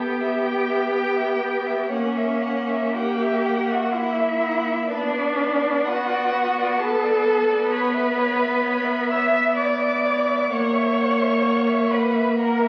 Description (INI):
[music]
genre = classical, slow romantic movement for string quartet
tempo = 56-66 BPM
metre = 3/4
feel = rubato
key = B minor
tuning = A4 = 440 Hz
[part]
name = rich violin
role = melody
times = 0.0-12.7 s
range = B4 to G5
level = -32 LUFS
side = equal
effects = none
[part]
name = rich violin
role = second line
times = 0.0-12.7 s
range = C#5 to E6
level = -30 LUFS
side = equal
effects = none
[part]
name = warm viola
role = accompaniment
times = 0.0-12.7 s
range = A#3 to B3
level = -26 LUFS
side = equal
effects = none
[part]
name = warm cello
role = bass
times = 0.0-12.7 s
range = C#4 to E5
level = -25 LUFS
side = equal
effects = none
[sound]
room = wet recital hall reverb, RT60 1.6 s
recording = very old 78 rpm record, vinyl crackle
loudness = -22 LUFS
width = mono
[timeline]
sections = 0.0-12.7 A section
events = none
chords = 0.0 Em/B; 1.9 F#7/A#; 4.9 Bm; 7.7 Bmadd11; 10.5 F#7/A#